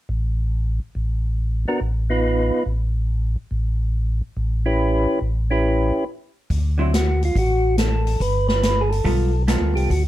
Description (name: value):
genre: soul jazz organ trio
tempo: 141 BPM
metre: 4/4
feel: swing 67% on 8ths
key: D mixolydian from 6.5 s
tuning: A4 = 442 Hz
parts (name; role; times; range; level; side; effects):
- mellow tonewheel organ; bass; 0.1-10.1 s; G1 to D2; -20 LUFS; equal; slow rotary speaker
- percussive tonewheel organ; melody; 1.7-10.0 s; B3 to B4; -21 LUFS; equal; slow rotary speaker
- swinging big-band drum kit; drums; 6.5-10.0 s; hi-hat, kick drum, snare drum; -24 LUFS; equal; none
- vintage hollow-body jazz guitar; accompaniment; 6.8-9.9 s; D3 to A4; -24 LUFS; right 2 dB; none
room: light reverb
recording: dark, warm production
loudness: -19 LUFS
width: side -14 dB against mid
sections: 0.0-6.5 A section; 6.5-10.1 B section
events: break 5.6-6.5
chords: 0.0 N.C.; 1.4 B7#11/A; 6.5 D; 8.2 G9